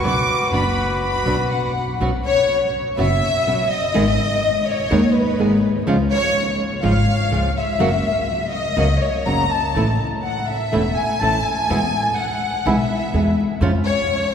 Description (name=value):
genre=tango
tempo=124 BPM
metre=4/4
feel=rubato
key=B major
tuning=A4 = 440 Hz
part: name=bandoneon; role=melody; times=0.0-1.7 s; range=F#4 to B4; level=-26 LUFS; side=left 1 dB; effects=none
part: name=warm studio violin section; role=second line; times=0.0-14.3 s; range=B4 to D6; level=-20 LUFS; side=left 2 dB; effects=none
part: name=flamenco guitar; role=accompaniment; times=0.0-13.7 s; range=B2 to G#4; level=-22 LUFS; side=equal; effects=none
part: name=upright bass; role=bass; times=0.0-13.8 s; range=E1 to E#2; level=-23 LUFS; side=equal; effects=none
room=wet cathedral reverb, RT60 5.6 s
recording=recorded in a church or concert hall, vinyl crackle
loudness=-17 LUFS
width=side -8 dB against mid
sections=0.0-2.0 A section; 2.0-14.3 B section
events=violin section solo 2.0-14.3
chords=0.0 Bm; 2.0 Bsus2; 4.0 G#m; 5.9 C#; 7.8 F#; 9.8 A; 11.7 E; 13.6 C#/E#